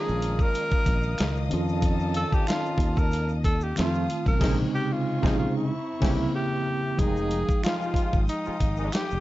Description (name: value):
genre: R&B, neo-soul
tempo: 93 BPM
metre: 4/4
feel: swing 56% on 16ths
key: F minor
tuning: A4 = 438 Hz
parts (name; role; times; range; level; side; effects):
- breathy tenor saxophone; melody; 0.0-9.2 s; Eb4 to Bb4; -30 LUFS; equal; none
- tine electric piano; accompaniment; 0.0-9.2 s; C3 to G5; -30 LUFS; right 1 dB; overdrive, fast stereo tremolo
- warm studio string section; sustained chords; 0.0-9.2 s; Ab3 to Eb6; -39 LUFS; left 2 dB; none
- warm horn section; stabs; 0.0-8.9 s; C3 to A5; -35 LUFS; left 2 dB; none
- fretless electric bass; bass; 0.1-9.2 s; F1 to F2; -28 LUFS; equal; none
- tube shaker and finger snaps; percussion; 0.1-9.2 s; none; -46 LUFS; right 4 dB; none
- dusty soul sampler-style drum kit; drums; 0.2-9.1 s; crash cymbal, hi-hat, kick drum, snare drum; -26 LUFS; equal; none
room: little or no reverb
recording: dark, warm production, nothing above 7.8 kHz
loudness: -23 LUFS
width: side -16 dB against mid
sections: 0.0-7.0 A section; 7.0-9.2 B section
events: band accent 4.4-7.0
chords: 0.0 Eb9sus4; 1.5 F7b13; 3.8 F7; 4.4 Bbm11; 5.7 C7b9; 7.0 Fm9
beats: 0.54 1.18 | 1.83 2.47 3.12 3.76 | 4.41 5.05 5.70 6.34 | 6.99 7.63 8.28 8.92